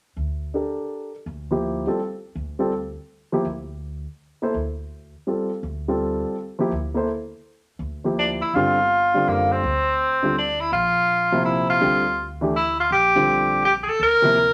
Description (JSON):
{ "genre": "modal jazz", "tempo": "165 BPM", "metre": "3/4", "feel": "swing 65% on 8ths", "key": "G dorian", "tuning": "A4 = 440 Hz", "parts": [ { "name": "upright bass", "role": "bass", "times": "0.2-14.5 s", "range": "F#1 to D2", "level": "-35 LUFS", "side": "equal", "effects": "none" }, { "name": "warm grand piano", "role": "accompaniment", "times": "0.5-14.3 s", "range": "C3 to C5", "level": "-26 LUFS", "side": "equal", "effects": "none" }, { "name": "clear tenor saxophone", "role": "melody", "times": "8.2-14.5 s", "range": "Bb3 to Bb4", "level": "-20 LUFS", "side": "equal", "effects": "none" } ], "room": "wet studio reverb, RT60 0.7 s", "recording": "none", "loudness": "-22 LUFS", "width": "mono", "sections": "0.0-8.5 A section; 8.5-14.5 B section", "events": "none", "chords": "0.0 Gm11", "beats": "0.18 0.54 | 0.91 1.27 1.63 | 2.00 2.36 2.73 | 3.09 3.46 3.82 | 4.18 4.55 4.91 | 5.27 5.64 6.00 | 6.37 6.73 7.09 | 7.46 7.82 8.18 | 8.55 8.91 9.28 | 9.64 10.00 10.37 | 10.73 11.09 11.46 | 11.82 12.18 12.55 | 12.91 13.27 13.63 | 14.00 14.36" }